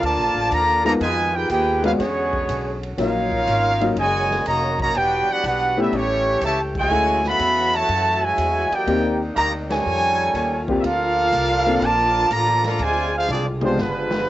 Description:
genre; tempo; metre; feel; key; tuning
jazz, big band swing; 122 BPM; 4/4; swing 69% on 8ths; unclear; A4 = 440 Hz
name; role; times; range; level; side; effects
clear trumpet section; melody; 0.0-14.3 s; Ab3 to Cb6; -20 LUFS; right 1 dB; none
mellow trombone section; second line; 0.0-14.3 s; A2 to G4; -28 LUFS; right 2 dB; cassette tape
dark saxophone section; sustained chords; 0.0-14.3 s; D3 to G4; -30 LUFS; left 1 dB; cassette tape
upright bass; bass; 0.0-14.3 s; E1 to F#2; -27 LUFS; equal; none
swinging big-band drum kit; drums; 0.0-14.2 s; crash cymbal, hi-hat, kick drum, ride cymbal, snare drum, toms; -34 LUFS; equal; cassette tape
warm upright piano; accompaniment; 0.8-13.8 s; Gb3 to Bb4; -22 LUFS; left 2 dB; cassette tape
room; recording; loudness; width
light reverb, small room ambience; home recording on cassette, nothing above 7.9 kHz; -18 LUFS; side -14 dB against mid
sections
0.0-14.3 A section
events
band accent 6.7, 9.6; drum fill 13.3-14.3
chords
0.0 Bbmaj7; 1.0 Fm7b5; 2.0 E13; 3.0 Ebm7; 4.9 Em9; 5.9 A7; 6.9 Dmaj9#11; 8.9 Cm9; 9.9 F7alt; 10.8 Bbmaj7; 12.8 Dm7b5; 13.8 G7b9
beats
0.03 0.52 | 1.01 1.51 2.00 2.49 | 2.98 3.47 3.96 4.45 | 4.94 5.43 5.92 6.42 | 6.91 7.40 7.89 8.38 | 8.87 9.36 9.85 10.34 | 10.84 11.33 11.82 12.31 | 12.80 13.29 13.79 14.28

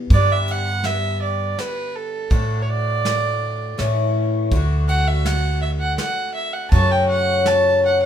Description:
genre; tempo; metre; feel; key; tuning
acoustic folk duo or small band; 82 BPM; 3/4; straight; D major; A4 = 440 Hz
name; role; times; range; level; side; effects
picked twelve-string acoustic guitar; accompaniment; 0.0-8.1 s; E2 to G4; -23 LUFS; left 3 dB; none
warm fiddle; second line; 0.1-8.1 s; A4 to A5; -23 LUFS; right 3 dB; none
upright bass; bass; 0.1-8.1 s; D2 to A2; -21 LUFS; equal; none
soft brush drum kit; drums; 0.1-7.6 s; kick drum, ride cymbal, snare drum; -24 LUFS; equal; none
room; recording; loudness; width
wet studio reverb, RT60 0.7 s; minimal, uncompressed stereo recording; -17 LUFS; side -9 dB against mid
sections
0.0-8.1 A section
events
fiddle solo 0.0-8.1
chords
0.1 G; 2.3 D/A; 3.8 A; 4.5 D; 6.7 F#m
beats
| 0.11 0.84 1.58 | 2.31 3.05 3.79 | 4.52 5.26 5.99 | 6.73 7.46

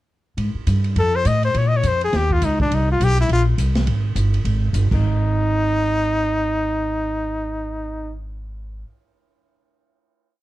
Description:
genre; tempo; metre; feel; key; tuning
jazz, small-group swing and bop; 206 BPM; 4/4; swing 61% on 8ths; Ab major; A4 = 440 Hz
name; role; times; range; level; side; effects
upright bass; bass; 0.4-8.8 s; G1 to Bb2; -20 LUFS; equal; none
open jazz drum kit; drums; 0.4-5.0 s; crash cymbal, hi-hat, kick drum, ride cymbal, snare drum; -27 LUFS; right 1 dB; none
brilliant trumpet; melody; 1.0-8.1 s; D4 to Eb5; -21 LUFS; left 1 dB; none
room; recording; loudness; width
little or no reverb; dark, warm production; -17 LUFS; side -16 dB against mid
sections
0.4-5.0 A section; 5.0-7.4 final hit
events
none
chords
0.4 N.C.; 1.0 F; 1.5 Bb5; 2.1 Dbadd9; 2.7 Abmaj9; 4.9 Ab5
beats
| 0.38 0.67 0.96 1.26 | 1.55 1.84 2.13 2.42 | 2.71 3.00 3.29 3.58 | 3.87 4.16 4.45 4.75 | 5.04 5.33 5.62 5.91 | 6.20 6.49 6.78 7.07

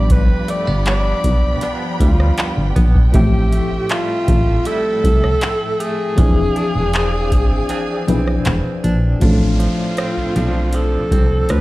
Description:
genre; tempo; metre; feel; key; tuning
contemporary R&B; 79 BPM; 4/4; straight; unclear; A4 = 437 Hz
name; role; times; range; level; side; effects
warm alto saxophone; melody; 0.0-11.6 s; F4 to D5; -22 LUFS; equal; slapback echo
FM electric piano with auto-pan; accompaniment; 0.0-11.6 s; F3 to G5; -23 LUFS; left 2 dB; none
warm studio string section; sustained chords; 0.0-9.2 s; F3 to B5; -29 LUFS; right 1 dB; sidechain pumping
direct-recorded clean electric guitar; arpeggios; 0.0-11.6 s; G2 to G#4; -26 LUFS; right 3 dB; tremolo, slapback echo
solid FM bass; bass; 0.0-11.6 s; E1 to D2; -17 LUFS; equal; none
booming analog drum machine; drums; 0.1-11.6 s; handclaps, hi-hat, kick drum, rim click; -15 LUFS; equal; none
downlifter; sound effects; 9.2-11.6 s; none; -32 LUFS; equal; none
room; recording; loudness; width
little or no reverb; played on a big sound system in a bare room, stone room reverb; -14 LUFS; side -18 dB against mid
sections
0.0-9.2 A section; 9.2-11.6 B section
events
break 7.7-9.2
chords
0.0 G7; 3.1 Fmaj9/A; 6.2 E7b9b13; 9.2 Dm7/A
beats
| 0.10 0.86 1.62 2.38 | 3.14 3.90 4.66 5.42 | 6.18 6.94 7.70 8.46 | 9.22 9.98 10.74 11.50

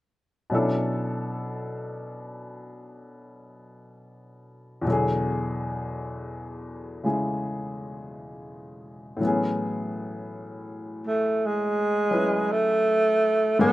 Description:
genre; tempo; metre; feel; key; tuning
jazz ballad; 55 BPM; 4/4; swing 66% on 8ths; A major; A4 = 440 Hz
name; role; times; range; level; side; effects
warm upright piano; accompaniment; 0.5-13.7 s; E2 to B4; -27 LUFS; left 1 dB; none
breathy tenor saxophone; melody; 11.1-13.7 s; G#3 to B3; -21 LUFS; right 1 dB; none
room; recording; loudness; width
light reverb; recorded outdoors, with no room sound; -23 LUFS; side -16 dB against mid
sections
0.5-9.2 A section; 9.2-13.7 B section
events
none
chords
0.5 Bm11; 4.9 E7; 9.2 Amaj13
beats
| 0.49 1.59 2.68 3.77 | 4.85 5.93 7.01 8.10 | 9.20 10.29 11.38 12.47 | 13.56

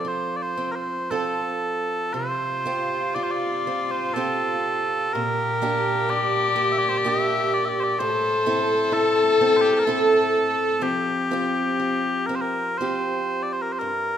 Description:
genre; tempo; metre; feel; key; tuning
celtic folk, Celtic slow air; 57-65 BPM; 3/4; rubato; unclear; A4 = 440 Hz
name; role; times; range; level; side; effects
mellow small bagpipes; melody; 0.0-14.2 s; G4 to E5; -24 LUFS; equal; none
picked acoustic archtop guitar; accompaniment; 0.0-14.2 s; G2 to A4; -28 LUFS; right 4 dB; none
dark cello; second line; 2.1-13.3 s; C4 to A4; -24 LUFS; left 3 dB; none
room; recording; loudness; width
moderate concert hall reverb, RT60 2.1 s; minimal, uncompressed stereo recording; -20 LUFS; side -9 dB against mid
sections
0.0-13.8 A section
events
none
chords
0.0 F; 2.1 Csus4; 5.1 Gm/Bb; 8.0 Am; 10.8 Fsus2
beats
0.06 1.08 | 2.12 3.14 4.14 | 5.12 6.09 7.04 | 7.98 8.91 9.85 | 10.81 11.77 12.78 | 13.79

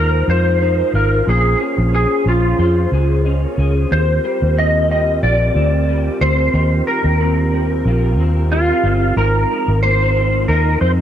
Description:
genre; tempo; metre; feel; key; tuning
indie pop; 91 BPM; 4/4; swing 55% on 16ths; Eb major; A4 = 439 Hz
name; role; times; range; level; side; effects
clean lap steel guitar; melody; 0.0-10.9 s; F4 to Eb5; -18 LUFS; equal; ensemble chorus, tape echo
electric guitar through a small old amp; accompaniment; 0.0-11.0 s; Ab2 to C5; -24 LUFS; left 4 dB; ensemble chorus, vibrato effect
percussive tonewheel organ; accompaniment; 0.0-11.0 s; C4 to Eb5; -25 LUFS; right 7 dB; fast rotary speaker, cassette tape
vintage muted fingered electric bass; bass; 0.0-11.0 s; G1 to F2; -16 LUFS; equal; none
room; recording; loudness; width
little or no reverb; dry, close 1970s-style studio recording; -13 LUFS; side -10 dB against mid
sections
0.0-11.0 A section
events
none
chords
0.0 Ab6; 1.3 Bbm9; 3.9 Eb69; 9.2 Ab6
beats
0.62 | 1.28 1.94 2.60 3.25 | 3.91 4.57 5.23 5.89 | 6.55 7.21 7.86 8.52 | 9.18 9.84 10.50

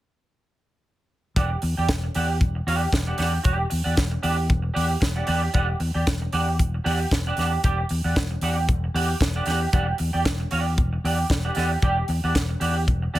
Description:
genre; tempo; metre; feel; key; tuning
disco; 115 BPM; 4/4; swing 56% on 16ths; E minor; A4 = 439 Hz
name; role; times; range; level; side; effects
clean electric guitar; accompaniment; 1.4-13.2 s; G4 to G5; -27 LUFS; right 3 dB; ensemble chorus
fingered electric bass; bass; 1.4-13.2 s; E1 to E2; -24 LUFS; left 1 dB; none
tight funk drum kit; drums; 1.4-13.2 s; hi-hat, kick drum, snare drum; -25 LUFS; equal; none
room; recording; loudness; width
studio reverb; none; -21 LUFS; side -15 dB against mid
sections
1.4-13.2 A section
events
none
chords
1.4 Em9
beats
| 1.36 1.89 2.41 2.93 | 3.45 3.98 4.50 5.02 | 5.54 6.07 6.59 7.12 | 7.64 8.16 8.69 9.21 | 9.73 10.26 10.78 11.30 | 11.83 12.35 12.88

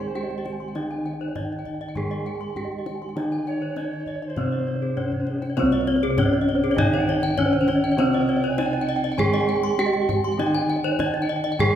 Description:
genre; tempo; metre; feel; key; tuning
Balinese gamelan; 100 BPM; 4/4; straight; C pelog; A4 = 440 Hz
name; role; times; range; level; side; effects
gamelan-type bronze metallophone; melody; 0.0-11.8 s; C4 to Ab4-20c; -25 LUFS; equal; none
breathy bright alto recorder; second line; 0.0-9.7 s; Ab4-24c to Ab5; -34 LUFS; right 2 dB; none
gamelan-type bronze metallophone; accompaniment; 0.0-11.8 s; C3 to Ab3-20c; -31 LUFS; right 2 dB; none
gamelan-type bronze metallophone; arpeggios; 0.0-11.7 s; Ab4-20c to C6; -29 LUFS; left 4 dB; none
gamelan-type bossed gongs; bass; 0.0-11.8 s; C2 to Eb4-30c; -28 LUFS; equal; none
gamelan-type bronze metallophone; arpeggios; 0.1-11.7 s; C5 to Ab5-20c; -32 LUFS; right 5 dB; none
kendang; percussion; 0.2-11.7 s; none; -30 LUFS; left 1 dB; none
room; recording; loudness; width
wet recital hall reverb, RT60 1.6 s; recorded in a church or concert hall; -21 LUFS; side -10 dB against mid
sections
0.0-5.6 A section; 5.6-11.8 A section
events
drum fill 5.0-5.6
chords
none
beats
0.16 | 0.76 1.36 1.96 2.57 | 3.17 3.77 4.37 4.97 | 5.58 6.18 6.78 7.38 | 7.98 8.59 9.19 9.79 | 10.39 10.99 11.60

